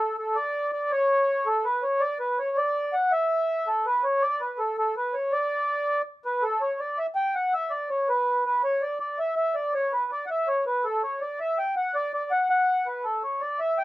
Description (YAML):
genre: celtic folk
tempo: 109 BPM (dotted quarters)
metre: 6/8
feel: straight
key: D major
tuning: A4 = 438 Hz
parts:
  - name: mellow accordion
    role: solo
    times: 0.0-13.8 s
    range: A4 to G5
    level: -23 LUFS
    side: equal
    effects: none
room: light reverb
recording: none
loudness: -23 LUFS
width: side -17 dB against mid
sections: 0.0-6.4 A section; 6.4-13.8 B section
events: none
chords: none